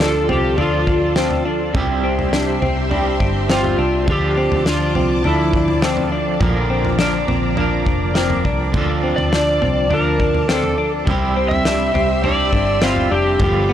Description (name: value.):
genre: dream pop.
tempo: 103 BPM.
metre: 4/4.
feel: straight.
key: D minor.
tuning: A4 = 440 Hz.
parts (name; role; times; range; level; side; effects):
overdriven slide guitar; melody; 0.0-13.7 s; E4 to E5; -21 LUFS; equal; tape echo.
electric guitar at the edge of break-up; accompaniment; 0.0-13.7 s; G2 to Bb4; -22 LUFS; right 3 dB; tremolo, wide subtle chorus.
string machine, violas; sustained chords; 0.0-13.7 s; F3 to E6; -24 LUFS; left 1 dB; ensemble chorus.
semi-hollow electric guitar; arpeggios; 0.0-13.7 s; B3 to D4; -23 LUFS; left 4 dB; wide subtle chorus, tape echo.
vintage muted fingered electric bass; bass; 0.0-13.7 s; F1 to D2; -22 LUFS; equal; none.
loose indie drum kit; drums; 0.0-13.5 s; kick drum, snare drum, toms; -22 LUFS; equal; none.
room: small room ambience.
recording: dry, gritty hardware recording, transformer saturation.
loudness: -15 LUFS.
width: side -10 dB against mid.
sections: 0.0-13.7 A section.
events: none.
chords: 0.0 Dm; 1.7 C; 4.1 Dm; 6.4 Bb; 8.7 Dm; 11.1 C.